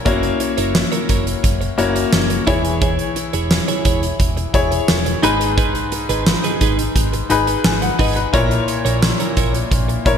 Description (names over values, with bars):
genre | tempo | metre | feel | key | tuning
1980s-style pop | 87 BPM | 4/4 | straight | G# minor | A4 = 440 Hz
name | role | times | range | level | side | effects
clear grand piano | accompaniment | 0.0-10.2 s | G#2 to G#5 | -19 LUFS | left 4 dB | none
twelve-string electric guitar | riff | 0.1-9.9 s | D#4 to C#5 | -24 LUFS | right 7 dB | wide subtle chorus
hollow-body short-scale fingered electric bass | bass | 0.1-10.2 s | E1 to A#1 | -22 LUFS | equal | none
huge arena drum kit | drums | 0.1-10.2 s | hi-hat, kick drum, snare drum, tambourine | -19 LUFS | right 1 dB | gated reverb
room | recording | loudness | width
moderate lush hall reverb, RT60 1.8 s, studio ambience | bright 1980s-style digital production | -15 LUFS | side -8 dB against mid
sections
0.0-10.2 A section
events
none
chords
0.1 F#7; 2.5 C#m/E; 5.2 G#m; 8.3 A#dim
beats
| 0.06 0.75 1.44 2.13 | 2.82 3.51 4.20 4.89 | 5.58 6.27 6.96 7.65 | 8.34 9.03 9.71